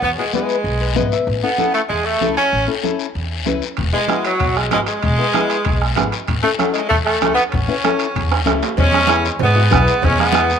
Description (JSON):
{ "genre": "latin, cumbia", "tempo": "192 BPM", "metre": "4/4", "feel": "straight", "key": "E major", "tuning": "A4 = 440 Hz", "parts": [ { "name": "clear saxophone section", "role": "melody", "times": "0.0-10.6 s", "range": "E3 to C#4", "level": "-18 LUFS", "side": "right 1 dB", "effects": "none" }, { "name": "upright bass", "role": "bass", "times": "0.0-10.5 s", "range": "E1 to G#2", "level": "-21 LUFS", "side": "equal", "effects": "none" }, { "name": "congas", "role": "percussion", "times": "0.0-10.5 s", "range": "none", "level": "-26 LUFS", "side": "right 12 dB", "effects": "none" }, { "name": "guiro", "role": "percussion", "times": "0.0-10.6 s", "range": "none", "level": "-27 LUFS", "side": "left 11 dB", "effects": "none" }, { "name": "flamenco guitar", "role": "accompaniment", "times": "0.2-10.5 s", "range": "B3 to E5", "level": "-23 LUFS", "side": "left 9 dB", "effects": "none" }, { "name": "bombo", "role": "percussion", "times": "3.8-10.5 s", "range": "none", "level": "-21 LUFS", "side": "right 2 dB", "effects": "none" }, { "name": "timbales and cowbell", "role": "percussion", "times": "3.8-10.2 s", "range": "none", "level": "-28 LUFS", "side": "right 12 dB", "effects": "none" } ], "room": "light reverb, small room reverb", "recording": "1960s-style stereo with parts hard left and right", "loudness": "-15 LUFS", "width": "side -7 dB against mid", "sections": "0.0-8.8 A section; 8.8-10.6 B section", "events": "nylon-string guitar fill 0.6-1.3; drum fill 8.3-8.8", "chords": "0.0 E; 1.3 A; 3.8 E; 6.3 A; 8.8 E", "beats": "| 0.02 0.34 0.65 0.96 | 1.27 1.59 1.90 2.21 | 2.52 2.84 3.15 3.46 | 3.78 4.09 4.40 4.71 | 5.03 5.34 5.65 5.96 | 6.28 6.59 6.90 7.22 | 7.53 7.84 8.15 8.47 | 8.78 9.09 9.40 9.71 | 10.03 10.34" }